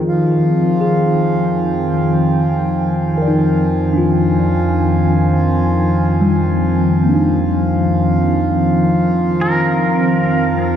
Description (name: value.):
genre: ambient.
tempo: 77 BPM.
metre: 3/4.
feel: straight.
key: F dorian.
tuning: A4 = 440 Hz.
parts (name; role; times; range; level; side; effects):
warm analog pad; sustained chords; 0.0-10.8 s; Eb3 to Ab5; -15 LUFS; left 1 dB; chorus, tremolo.
mellow tine electric piano; arpeggios; 0.0-10.8 s; G3 to D5; -20 LUFS; left 1 dB; medium stereo tremolo, tape echo.
deep rumbling drone; bass; 0.0-10.8 s; F2; -21 LUFS; equal; built-in reverb.
hand-pumped harmonium; drone; 0.1-10.8 s; F3 to F4; -22 LUFS; right 2 dB; none.
pedal steel guitar; melody; 9.4-10.8 s; Bb4; -19 LUFS; equal; none.
room: wet concert hall reverb, RT60 2.3 s.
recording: dark, warm production.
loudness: -13 LUFS.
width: side -9 dB against mid.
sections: 0.1-10.8 A section.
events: none.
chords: 0.1 Fm9.